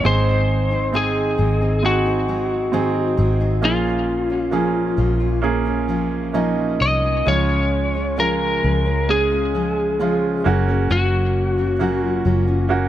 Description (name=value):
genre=pop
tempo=67 BPM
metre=4/4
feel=straight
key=Db major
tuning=A4 = 440 Hz
part: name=lightly driven lead guitar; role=melody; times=0.0-12.7 s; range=F4 to Eb5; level=-21 LUFS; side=left 2 dB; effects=none
part: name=clear baby grand piano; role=accompaniment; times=0.0-12.9 s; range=Ab2 to Ab4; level=-23 LUFS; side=right 6 dB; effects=none
part: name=fingerpicked steel-string acoustic guitar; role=arpeggios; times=0.0-12.9 s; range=Gb2 to Ab4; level=-26 LUFS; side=left 4 dB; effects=none
part: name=vintage muted fingered electric bass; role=bass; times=0.0-12.9 s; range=Gb1 to Db2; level=-22 LUFS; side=equal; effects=none
room=light reverb, small room ambience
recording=none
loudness=-17 LUFS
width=side -12 dB against mid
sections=0.0-12.9 A section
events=none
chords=0.0 Ab; 3.6 Bbm7; 7.3 Db; 10.4 Gb